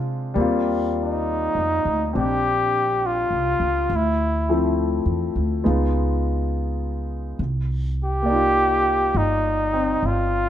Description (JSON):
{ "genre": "jazz ballad", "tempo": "68 BPM", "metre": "4/4", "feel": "swing 69% on 8ths", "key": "Eb major", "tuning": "A4 = 440 Hz", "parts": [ { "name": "warm flugelhorn", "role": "melody", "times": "0.0-10.5 s", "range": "Eb4 to G4", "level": "-21 LUFS", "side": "equal", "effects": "none" }, { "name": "warm concert grand piano", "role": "accompaniment", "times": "0.0-10.5 s", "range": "F3 to D5", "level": "-24 LUFS", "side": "left 2 dB", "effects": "none" }, { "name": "upright bass", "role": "bass", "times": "0.0-10.5 s", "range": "G1 to B#2", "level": "-24 LUFS", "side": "equal", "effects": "none" } ], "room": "light reverb", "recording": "none", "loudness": "-19 LUFS", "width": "side -10 dB against mid", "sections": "0.4-10.5 A section", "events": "none", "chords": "0.4 Eb69; 3.9 Dm9; 5.6 Db9; 7.4 Cm11" }